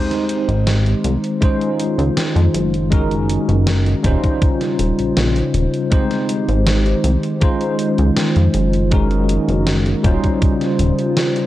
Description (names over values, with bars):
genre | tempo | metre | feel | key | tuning
vaporwave | 80 BPM | 4/4 | straight | Ab major | A4 = 440 Hz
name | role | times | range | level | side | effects
bell-like tine electric piano | accompaniment | 0.0-11.5 s | G3 to C5 | -19 LUFS | equal | medium stereo tremolo, lush chorus, vintage 12-bit sampler grit, tape echo
warbly tape-like pad | sustained chords | 0.4-11.5 s | Db3 to C5 | -23 LUFS | left 1 dB | chorus, built-in reverb
gated 80s digital drum machine | drums | 0.1-11.5 s | hi-hat, snare drum | -24 LUFS | equal | gated reverb, gated reverb snare
chorused synth bass | bass | 0.5-10.9 s | Eb1 to F2 | -17 LUFS | equal | none
electronic kick drum | drums | 1.4-10.6 s | none | -16 LUFS | equal | none
room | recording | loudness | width
little or no reverb | dry, gritty hardware recording, cassette tape | -14 LUFS | side -14 dB against mid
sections
0.0-11.5 A section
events
none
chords
0.0 Abmaj7; 1.4 Dbmaj9; 2.9 Gb69; 4.0 Eb13; 5.9 Abmaj7; 7.4 Dbmaj9; 8.9 Gb69; 10.0 Eb13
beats
0.67 1.42 2.17 | 2.92 3.67 4.42 5.17 | 5.92 6.67 7.42 8.17 | 8.92 9.67 10.42 11.17